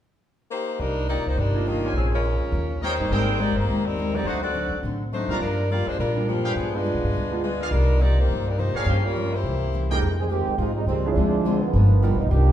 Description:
jazz, big band swing; 208 BPM; 4/4; swing 60% on 8ths; C minor; A4 = 439 Hz
warm saxophone section; melody; 0.5-9.9 s; Eb3 to D5; -26 LUFS; left 2 dB
picked steel-string acoustic guitar; accompaniment; 0.8-12.5 s; G2 to C5; -31 LUFS; left 4 dB
upright bass; bass; 0.8-12.5 s; G1 to B2; -23 LUFS; equal
warm concert grand piano; accompaniment; 1.5-12.2 s; F2 to A#4; -30 LUFS; right 4 dB
bright trumpet section; stabs; 1.8-10.0 s; G4 to Bb5; -31 LUFS; right 1 dB
warm trombone section; second line; 10.2-12.5 s; Eb3 to Ab4; -25 LUFS; right 4 dB
wet recital hall reverb, RT60 1.6 s; minimal, uncompressed stereo recording; -21 LUFS; side -11 dB against mid
0.8-10.0 A section; 10.0-12.5 B section
trombone section solo 10.0-12.5
0.0 Cm7; 0.8 Cm11; 1.9 Bbm9; 2.5 Eb7; 3.1 Abmaj9; 4.3 D7b9; 5.4 Gm7; 6.6 G7b9; 7.7 Cm11; 8.9 Gm7b5; 9.4 C7b9; 10.0 Fm11; 11.2 Dm7b5; 11.7 G7alt
0.22 0.51 | 0.80 1.08 1.37 1.66 | 1.95 2.23 2.52 2.81 | 3.10 3.39 3.67 3.96 | 4.25 4.54 4.83 5.11 | 5.40 5.69 5.98 6.27 | 6.55 6.84 7.13 7.42 | 7.71 7.99 8.28 8.57 | 8.86 9.15 9.44 9.72 | 10.01 10.30 10.59 10.87 | 11.16 11.45 11.74 12.02 | 12.31

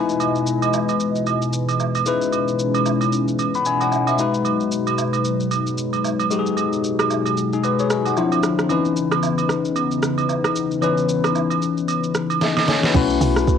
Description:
amapiano; 113 BPM; 4/4; swing 58% on 16ths; C# minor; A4 = 445 Hz
bell-like tine electric piano; accompaniment; 0.0-13.6 s; E3 to B5; -21 LUFS; left 7 dB; phaser, cassette tape
hollow soft pad; sustained chords; 0.0-12.9 s; B2 to D#5; -24 LUFS; right 1 dB; chorus, sidechain pumping, cassette tape
smooth R&B drum kit; drums; 0.1-13.6 s; crash cymbal, hi-hat, kick drum, rim click, shaker, snare drum; -24 LUFS; right 2 dB; cassette tape
agogo bells and woodblock; percussion; 0.2-12.7 s; -25 LUFS; right 14 dB
woody log drum bass; bass; 12.9-13.6 s; B1; -21 LUFS; right 2 dB
light reverb; home recording on cassette; -18 LUFS; side -7 dB against mid
0.0-12.9 A section
tine electric piano fill 0.0; drum fill 12.4-12.9
0.0 Emaj7; 4.2 G#m7; 8.2 Dm9; 8.7 C#m9; 12.9 B9sus4
| 0.20 0.73 1.26 1.80 | 2.33 2.86 3.39 3.92 | 4.45 4.98 5.51 6.04 | 6.57 7.11 7.64 8.17 | 8.70 9.23 9.76 10.29 | 10.82 11.35 11.88 12.41 | 12.95 13.48

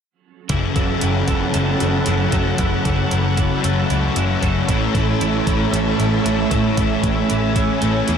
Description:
rock, shoegaze and dream pop; 115 BPM; 4/4; straight; A4 = 440 Hz
string machine, full ensemble; sustained chords; 0.5-8.2 s; C#5 to E6; -26 LUFS; equal; ensemble chorus
twelve-string electric guitar; arpeggios; 0.5-8.2 s; E3 to A3; -28 LUFS; right 10 dB; ensemble chorus, analog delay
raw garage guitar; riff; 0.5-8.2 s; F#3 to A4; -23 LUFS; right 12 dB; overdrive, reverse reverb
thick fuzz guitar; riff; 0.5-8.2 s; F#2 to A3; -21 LUFS; left 9 dB; distortion, ensemble chorus
vintage muted picked electric bass; bass; 0.5-8.2 s; F#1 to A2; -22 LUFS; equal
detuned 8-bit digital drum machine; drums; 0.5-8.2 s; hi-hat, kick drum; -23 LUFS; equal; overdrive
light reverb; -16 LUFS; side -7 dB against mid
0.5-8.2 A section
0.5 F#m7; 4.7 A
| 0.50 1.02 1.55 2.07 | 2.59 3.12 3.64 4.16 | 4.68 5.21 5.73 6.25 | 6.77 7.29 7.82

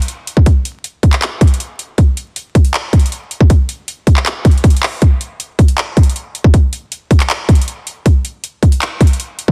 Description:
hip hop; 158 BPM; 4/4; half-time
trap drum kit; drums; 0.0-9.5 s; handclaps, hi-hat, kick drum; -12 LUFS; equal
little or no reverb; dense, heavily limited modern master, vinyl crackle; -13 LUFS; mono
0.0-9.5 A section
0.08 | 0.46 0.84 1.22 1.60 | 1.98 2.36 2.74 3.12 | 3.50 3.88 4.26 4.64 | 5.02 5.40 5.78 6.16 | 6.54 6.92 7.30 7.68 | 8.06 8.44 8.82 9.20

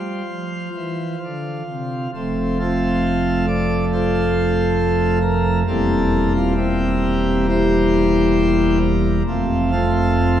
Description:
classical, chorale-style piece for pipe organ; 64-70 BPM; 4/4; rubato; F major; A4 = 440 Hz
pipe organ, plenum; solo; 0.0-10.4 s; E1 to D5; -16 LUFS; equal
wet church reverb, RT60 2.8 s; dark, warm production, faint mains hum; -16 LUFS; side -10 dB against mid
0.0-2.1 A section; 2.1-10.4 A section
0.0 F5; 2.1 F; 5.7 C7/E; 9.3 F
0.29 1.22 | 2.14 3.03 3.92 4.78 | 5.67 6.57 7.49 8.38 | 9.26 10.15

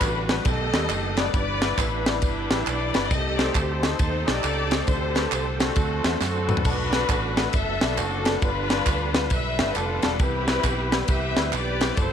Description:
uptempo gospel; 136 BPM; 4/4; swing 63% on 8ths; A4 = 438 Hz
clear studio string section; melody; 0.0-12.1 s; C4 to E5; -27 LUFS; left 2 dB
bright baby grand piano; accompaniment; 0.0-11.9 s; G2 to D5; -31 LUFS; left 14 dB
bright tonewheel organ; sustained chords; 0.0-12.1 s; D3 to G4; -33 LUFS; right 14 dB; fast rotary speaker, overdrive, chorus vibrato
fingered electric bass; bass; 0.0-12.1 s; E1 to F#2; -29 LUFS; equal
tight funk drum kit; drums; 0.0-12.1 s; crash cymbal, kick drum, ride cymbal, snare drum, toms; -25 LUFS; right 1 dB
handclaps and tambourine; percussion; 0.0-12.1 s; -34 LUFS; right 6 dB
studio ambience; 1960s-style stereo with parts hard left and right; -21 LUFS; side -8 dB against mid
0.0-12.1 A section
drum fill 6.2-6.7
0.5 B7alt; 1.3 Em7/G; 3.1 Cm6; 4.9 D7sus4; 5.8 D7; 6.7 Bm7; 8.4 G7; 10.2 Cmaj7
0.01 0.45 0.90 | 1.34 1.78 2.22 2.67 | 3.11 3.55 3.99 4.44 | 4.88 5.32 5.76 6.21 | 6.65 7.09 7.54 7.98 | 8.42 8.87 9.31 9.76 | 10.20 10.64 11.09 11.53 | 11.98

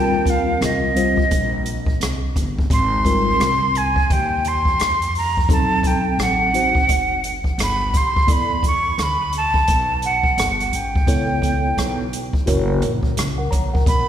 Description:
hip hop, jazz-hop; 86 BPM; 4/4; swing 63% on 16ths; A4 = 442 Hz
breathy bright jazz flute; melody; 0.0-14.1 s; D#5 to C#6; -19 LUFS; right 1 dB
mellow tine electric piano; accompaniment; 0.0-14.1 s; F#3 to A#5; -24 LUFS; left 1 dB; fast stereo tremolo
upright bass; bass; 0.0-14.1 s; F#1 to E#2; -24 LUFS; equal
open jazz drum kit; drums; 0.3-14.1 s; hi-hat, kick drum, rim click; -21 LUFS; equal
wet concert hall reverb, RT60 2.5 s; recorded in a church or concert hall; -16 LUFS; side -10 dB against mid
0.0-14.1 A section
0.0 D#69; 2.7 G#6; 5.5 B7b9; 8.3 Em7; 11.1 C#m7b5; 12.5 F#7
0.61 1.31 2.01 | 2.71 3.40 4.10 4.80 | 5.50 6.19 6.89 7.59 | 8.29 8.98 9.68 10.38 | 11.08 11.77 12.47 13.17 | 13.87

